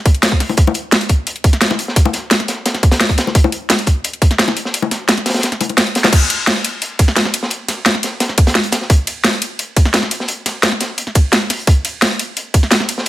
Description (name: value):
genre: drum and bass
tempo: 173 BPM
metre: 4/4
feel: straight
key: none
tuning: none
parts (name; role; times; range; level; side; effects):
- crunchy breakbeat drum kit; drums; 0.1-13.1 s; hi-hat, snare drum; -21 LUFS; equal; high-pass filter on hats, studio reverb, high-pass filter on snare, high-pass filter on room
- drum and bass drum kit; drums; 0.1-13.1 s; crash cymbal, hi-hat, ride cymbal, snare drum; -15 LUFS; equal; overdrive, studio reverb
- electronic kick drum; drums; 0.1-12.6 s; none; -11 LUFS; equal; overdrive, studio reverb
- bongos; percussion; 0.5-6.1 s; none; -20 LUFS; left 6 dB; none
room: small room ambience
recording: none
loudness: -13 LUFS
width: side -14 dB against mid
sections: 0.0-6.1 A section; 6.1-13.1 A section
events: drop 0.0-6.1, 6.1-13.1; kick drops out 4.7-6.1; drum fill 5.8-6.1; band accent 6.0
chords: none